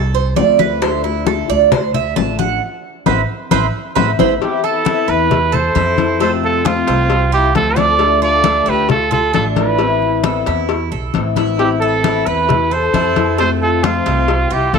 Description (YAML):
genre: latin, Cuban son and guajira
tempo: 134 BPM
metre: 4/4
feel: straight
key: A minor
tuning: A4 = 436 Hz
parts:
  - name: Cuban tres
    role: arpeggios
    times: 0.0-14.8 s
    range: A3 to A5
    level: -20 LUFS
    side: right 12 dB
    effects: none
  - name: upright bass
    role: bass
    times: 0.0-14.8 s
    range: A1 to F2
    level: -20 LUFS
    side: right 1 dB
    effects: none
  - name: congas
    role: percussion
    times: 0.1-14.8 s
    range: none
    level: -20 LUFS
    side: left 7 dB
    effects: none
  - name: picked steel-string acoustic guitar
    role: accompaniment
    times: 0.4-14.8 s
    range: C3 to F4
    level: -21 LUFS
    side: left 12 dB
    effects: none
  - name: bongos and cowbell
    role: percussion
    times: 0.4-14.8 s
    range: none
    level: -24 LUFS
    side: left 11 dB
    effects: none
  - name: clear trumpet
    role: melody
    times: 4.4-14.8 s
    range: F4 to D5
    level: -16 LUFS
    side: right 4 dB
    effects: none
  - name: dark studio violin section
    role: second line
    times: 4.4-14.8 s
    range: C4 to A4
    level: -24 LUFS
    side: left 10 dB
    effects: slapback echo
room: moderate echo chamber reverb, RT60 2.2 s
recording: 1960s-style stereo with parts hard left and right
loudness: -13 LUFS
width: side -5 dB against mid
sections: 0.0-4.4 A section; 4.4-14.8 B section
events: Cuban tres solo 0.0-4.4; band accent 2.6-4.4; drum fill 4.2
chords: 0.0 F; 0.8 Dm; 2.6 Amadd9; 6.2 F; 8.0 Dm; 9.8 Amadd9; 13.4 F